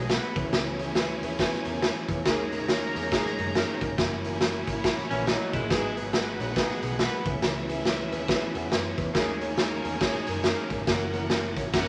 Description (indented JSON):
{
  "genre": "uptempo 1960s-style soul",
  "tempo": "139 BPM",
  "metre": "4/4",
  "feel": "swing 61% on 8ths",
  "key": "unclear",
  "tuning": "A4 = 440 Hz",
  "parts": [
    { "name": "clear horn section", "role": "second line", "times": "0.0-10.8 s", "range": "G#3 to C#5", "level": "-38 LUFS", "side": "equal", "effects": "none" },
    { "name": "warm studio violin section", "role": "second line", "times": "0.0-11.9 s", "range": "B3 to A#5", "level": "-39 LUFS", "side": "equal", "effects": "none" },
    { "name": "warm grand piano", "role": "accompaniment", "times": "0.0-11.9 s", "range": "A#3 to B5", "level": "-36 LUFS", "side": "equal", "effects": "none" },
    { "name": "mellow tonewheel organ", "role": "sustained chords", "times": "0.0-11.9 s", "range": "D#3 to C#4", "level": "-38 LUFS", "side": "equal", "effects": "slow rotary speaker, chorus vibrato" },
    { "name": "vintage muted fingered electric bass", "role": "bass", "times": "0.0-11.9 s", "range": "F#1 to G#2", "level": "-39 LUFS", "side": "equal", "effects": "none" },
    { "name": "raw garage drum kit", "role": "drums", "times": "0.1-11.9 s", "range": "crash cymbal, hi-hat, kick drum, snare drum", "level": "-29 LUFS", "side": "equal", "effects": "none" },
    { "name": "electric guitar through a small old amp", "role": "riff", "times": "5.1-5.9 s", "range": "E3 to E4", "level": "-33 LUFS", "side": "equal", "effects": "tube saturation" }
  ],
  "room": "moderate studio reverb, RT60 0.5 s",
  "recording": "none",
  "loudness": "-27 LUFS",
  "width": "mono",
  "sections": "0.0-11.9 A section",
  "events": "grand piano fill 1.4-2.3, 8.3-9.2",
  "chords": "0.3 C#m7; 2.3 D#7sus4; 4.0 F#7; 5.7 G#m7; 7.2 C#m7; 9.2 D#7sus4; 10.9 F#7"
}